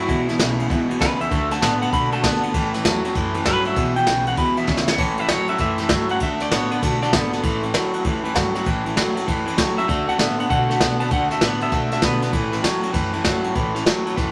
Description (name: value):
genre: rockabilly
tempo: 196 BPM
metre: 4/4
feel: swing 64% on 8ths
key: A major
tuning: A4 = 441 Hz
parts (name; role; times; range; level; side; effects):
- electric guitar through a small old amp; melody; 0.0-7.7, 9.8-12.6 s; E4 to B5; -26 LUFS; equal; tremolo
- picked steel-string acoustic guitar; accompaniment; 0.0-14.3 s; E2 to F#4; -33 LUFS; equal; none
- electric guitar at the edge of break-up; riff; 0.0-14.3 s; E2 to B3; -25 LUFS; equal; none
- upright bass; bass; 0.0-14.3 s; E1 to B2; -32 LUFS; equal; none
- jazz brush drum kit; drums; 0.1-14.3 s; crash cymbal, kick drum, ride cymbal, snare drum; -25 LUFS; equal; none
room: wet studio reverb, RT60 0.8 s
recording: none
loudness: -20 LUFS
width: mono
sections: 0.0-5.0 A section; 5.0-14.3 B section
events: clean electric guitar solo 0.0-5.0; drum fill 4.7-5.0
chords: 0.1 E; 1.3 D; 2.5 A; 3.8 E; 5.0 A; 6.2 D; 7.4 A; 9.9 D; 12.3 A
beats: | 0.08 0.39 0.70 1.00 | 1.31 1.62 1.92 2.23 | 2.54 2.84 3.15 3.46 | 3.76 4.07 4.38 4.68 | 4.99 5.29 5.60 5.91 | 6.21 6.52 6.83 7.13 | 7.44 7.75 8.05 8.36 | 8.66 8.97 9.27 9.58 | 9.89 10.19 10.50 10.80 | 11.11 11.41 11.72 12.03 | 12.33 12.64 12.95 13.25 | 13.56 13.86 14.17